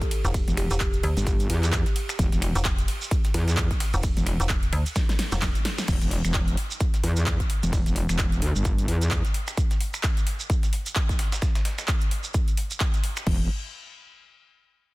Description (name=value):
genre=bass house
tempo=130 BPM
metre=4/4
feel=swing 58% on 16ths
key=E minor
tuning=A4 = 445 Hz
part: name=kalimba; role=melody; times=0.0-1.2 s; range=G4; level=-36 LUFS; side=right 2 dB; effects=tape echo
part: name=big-room dance drum kit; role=drums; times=0.0-13.4 s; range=crash cymbal, finger snaps, handclaps, hi-hat, ride cymbal, snare drum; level=-32 LUFS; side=equal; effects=none
part: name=electronic kick drum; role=drums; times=0.0-13.4 s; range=none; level=-25 LUFS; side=equal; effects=none
part: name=shekere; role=percussion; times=0.0-13.2 s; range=none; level=-36 LUFS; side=right 4 dB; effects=none
part: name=dusty soul sampler-style drum kit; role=drums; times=0.1-13.3 s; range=hi-hat, snare drum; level=-41 LUFS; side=equal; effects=none
part: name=metallic FM bass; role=bass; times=0.2-5.5 s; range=E1 to D2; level=-26 LUFS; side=equal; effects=tube saturation, sidechain pumping
part: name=metallic wobble bass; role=bass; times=0.5-9.2, 13.3-13.5 s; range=E1 to E2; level=-24 LUFS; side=equal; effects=chorus, tube saturation, sidechain pumping
room=digital ambience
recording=dense, heavily limited modern master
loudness=-22 LUFS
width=side -20 dB against mid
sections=0.0-5.9 A section; 5.9-13.3 B section; 13.3-14.9 C section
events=drop 0.0-5.9; drum fill 5.0-5.9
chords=none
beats=| 0.34 0.81 1.27 1.73 | 2.19 2.65 3.11 3.57 | 4.04 4.50 4.96 5.42 | 5.88 6.34 6.80 7.27 | 7.73 8.19 8.65 9.11 | 9.57 10.04 10.50 10.96 | 11.42 11.88 12.34 12.80 | 13.27